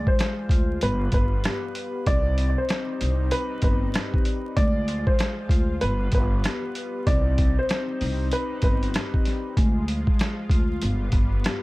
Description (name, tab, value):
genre	hip hop, boom-bap hip-hop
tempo	96 BPM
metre	4/4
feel	swing 61% on 16ths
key	C harmonic minor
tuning	A4 = 440 Hz
part	warm upright piano	melody	0.0-9.5 s	B4 to D5	-30 LUFS	equal	high-pass filter, low-pass filter, digital delay
part	vibraphone with soft mallets	accompaniment	0.0-11.6 s	Ab3 to D5	-32 LUFS	left 2 dB	cassette tape, high-pass filter, low-pass filter
part	lush unison pad	sustained chords	0.0-11.6 s	F3 to F4	-38 LUFS	equal	chorus, high-pass filter, low-pass filter
part	upright bass	bass	0.0-11.4 s	G1 to D2	-25 LUFS	equal	none
part	boom bap sampler-style drum kit	drums	0.1-11.6 s	hi-hat, kick drum, rim click, snare drum	-23 LUFS	equal	none
room	little or no reverb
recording	dark, warm production, vinyl crackle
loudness	-21 LUFS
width	side -20 dB against mid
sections	0.0-11.6 A section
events	none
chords	0.0 Ddim; 0.8 G7; 2.1 Cmadd9; 4.6 Ddim; 5.8 G7; 7.1 Cmadd9; 9.6 Ddim; 10.8 G7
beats	0.19 0.82 1.44 | 2.07 2.69 3.32 3.94 | 4.57 5.19 5.82 6.44 | 7.07 7.69 8.32 8.94 | 9.57 10.19 10.82 11.44